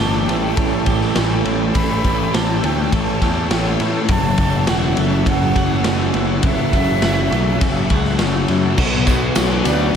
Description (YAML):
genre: rock, shoegaze and dream pop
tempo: 102 BPM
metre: 4/4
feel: straight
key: unclear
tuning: A4 = 444 Hz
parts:
  - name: breathy mellow silver concert flute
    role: melody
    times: 0.0-10.0 s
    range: D5 to B5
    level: -25 LUFS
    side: right 2 dB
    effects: tape echo
  - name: string machine, violas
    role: sustained chords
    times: 0.0-10.0 s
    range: F#4 to E6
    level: -27 LUFS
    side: equal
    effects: ensemble chorus
  - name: twelve-string electric guitar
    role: arpeggios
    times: 0.0-10.0 s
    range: E3 to G4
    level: -28 LUFS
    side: right 7 dB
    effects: wide subtle chorus, tape echo
  - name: direct-recorded clean electric guitar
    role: riff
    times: 0.0-8.8 s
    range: F#2 to G4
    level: -25 LUFS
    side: right 10 dB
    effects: reverse reverb
  - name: thick fuzz guitar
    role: riff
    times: 0.0-10.0 s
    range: F#2 to B3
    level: -22 LUFS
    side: left 8 dB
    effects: distortion, lush chorus
  - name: fuzz picked electric bass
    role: bass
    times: 0.0-9.9 s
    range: E1 to A2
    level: -21 LUFS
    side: equal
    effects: overdrive
  - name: raw garage drum kit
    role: drums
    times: 0.3-9.8 s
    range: crash cymbal, kick drum, ride cymbal, snare drum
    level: -20 LUFS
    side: equal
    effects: none
  - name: tambourine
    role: percussion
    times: 9.1-9.8 s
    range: none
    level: -34 LUFS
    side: right 11 dB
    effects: none
room: moderate plate reverb, RT60 1.3 s, small room ambience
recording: dreamy mix soaked in reverb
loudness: -15 LUFS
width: side -8 dB against mid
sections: 0.0-8.8 A section; 8.8-10.0 A section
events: none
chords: 0.0 A7; 4.1 F#m7; 8.8 Bmadd9